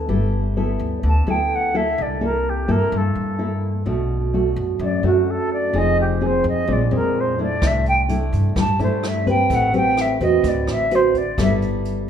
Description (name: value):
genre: bossa nova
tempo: 128 BPM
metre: 4/4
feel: straight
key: G major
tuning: A4 = 440 Hz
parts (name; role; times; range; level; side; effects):
- nylon-string guitar; accompaniment; 0.0-12.1 s; F#2 to B4; -21 LUFS; equal; none
- upright bass; bass; 0.0-12.0 s; F1 to G2; -23 LUFS; equal; none
- silver concert flute; melody; 1.1-11.6 s; F#4 to A5; -21 LUFS; right 1 dB; none
- jazz brush drum kit; drums; 7.6-12.0 s; hi-hat, kick drum, rim click; -27 LUFS; equal; none
room: moderate recital hall reverb, RT60 1.4 s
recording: recorded in a church or concert hall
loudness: -17 LUFS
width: side -8 dB against mid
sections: 0.1-12.1 A section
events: flute solo 0.1-12.1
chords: 0.1 G69; 2.0 C6; 3.9 Bm7; 5.7 Fm7; 6.7 Bb9; 7.6 C69; 9.5 Am9; 10.4 D6; 11.4 G69